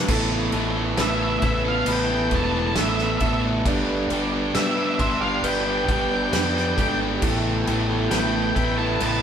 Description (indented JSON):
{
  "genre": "post-rock",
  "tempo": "67 BPM",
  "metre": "4/4",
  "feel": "straight",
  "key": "unclear",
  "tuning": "A4 = 440 Hz",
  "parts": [
    { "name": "deep dark ambient pad", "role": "sustained chords", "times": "0.0-9.2 s", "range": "G4 to B5", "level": "-35 LUFS", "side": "right 1 dB", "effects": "none" },
    { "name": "electric guitar at the edge of break-up", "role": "arpeggios", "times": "0.0-9.2 s", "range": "A4 to C6", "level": "-30 LUFS", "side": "equal", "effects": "none" },
    { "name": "twangy electric guitar", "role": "arpeggios", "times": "0.0-9.2 s", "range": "G2 to A4", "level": "-32 LUFS", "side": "left 1 dB", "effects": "none" },
    { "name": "overdriven semi-hollow guitar", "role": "riff", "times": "0.0-9.2 s", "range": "D3 to A4", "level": "-28 LUFS", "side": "left 6 dB", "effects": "none" },
    { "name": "crunchy overdriven guitar", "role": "riff", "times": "0.1-9.2 s", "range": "G3 to A4", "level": "-28 LUFS", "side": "right 6 dB", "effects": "none" },
    { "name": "fuzz fingered electric bass", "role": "bass", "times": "0.1-9.2 s", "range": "E1 to G2", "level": "-27 LUFS", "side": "equal", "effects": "overdrive" },
    { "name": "loose indie drum kit", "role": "drums", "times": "0.1-9.2 s", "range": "crash cymbal, kick drum, snare drum", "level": "-26 LUFS", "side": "equal", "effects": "none" },
    { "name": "octave-fuzz lead guitar", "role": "melody", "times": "1.0-9.2 s", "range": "E5 to A5", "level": "-26 LUFS", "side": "equal", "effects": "distortion" }
  ],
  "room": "wet studio reverb, RT60 0.8 s",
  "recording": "band playing live in one room",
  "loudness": "-20 LUFS",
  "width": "side -8 dB against mid",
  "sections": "0.1-9.2 A section",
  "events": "none",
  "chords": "0.1 Asus2; 3.7 G; 7.2 Asus2"
}